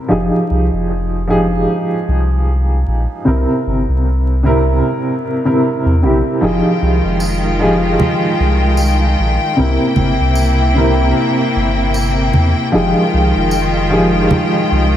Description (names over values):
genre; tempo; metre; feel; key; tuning
trip hop; 76 BPM; 4/4; swing 56% on 16ths; F minor; A4 = 438 Hz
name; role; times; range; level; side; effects
dark upright piano; accompaniment; 0.0-15.0 s; C3 to Bb4; -16 LUFS; equal; tremolo, tape echo
soft dub sub bass; bass; 0.1-15.0 s; F1 to E2; -16 LUFS; equal; tube saturation
clear chamber string section; sustained chords; 6.4-15.0 s; C3 to G5; -17 LUFS; left 1 dB; none
tambourine and congas; percussion; 7.2-14.5 s; none; -21 LUFS; right 1 dB; none
room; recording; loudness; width
moderate plate reverb, RT60 2.6 s; dreamy mix soaked in reverb, vinyl crackle; -12 LUFS; side -11 dB against mid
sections
0.0-15.0 A section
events
none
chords
0.1 Fm9; 3.3 C7; 6.4 Fm9; 9.6 C7; 12.7 Fm9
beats
| 0.10 0.89 1.68 2.47 | 3.26 4.05 4.84 5.63 | 6.42 7.21 8.00 8.79 | 9.57 10.36 11.15 11.94 | 12.73 13.52 14.31